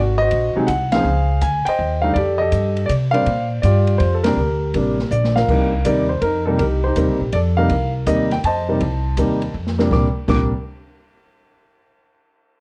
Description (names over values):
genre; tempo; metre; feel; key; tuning
jazz piano trio; 162 BPM; 3/4; swing 66% on 8ths; Bb major; A4 = 440 Hz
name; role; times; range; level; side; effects
warm concert grand piano; melody; 0.0-10.5 s; C3 to D6; -21 LUFS; equal; plate reverb
upright bass; bass; 0.0-10.5 s; Ab1 to C3; -22 LUFS; equal; none
open jazz drum kit; drums; 0.3-10.4 s; crash cymbal, hi-hat, kick drum, ride cymbal, snare drum; -29 LUFS; equal; none
room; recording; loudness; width
light reverb; worn, warbling old tape, cassette tape, warbly pitch drift; -18 LUFS; mono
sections
0.0-5.5 A section; 5.5-9.9 B section; 9.9-11.0 C section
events
band accent 0.9, 4.2; drum fill 5.1-5.5, 9.5-9.9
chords
0.0 Ab7; 1.0 Dbmaj9; 2.2 F13; 3.3 Bb69; 5.5 Cm7; 6.2 F7(no3); 6.6 Cm7; 7.3 F7; 7.7 Cm7; 8.4 F7; 8.8 Cm7; 9.5 F5; 9.9 Bb69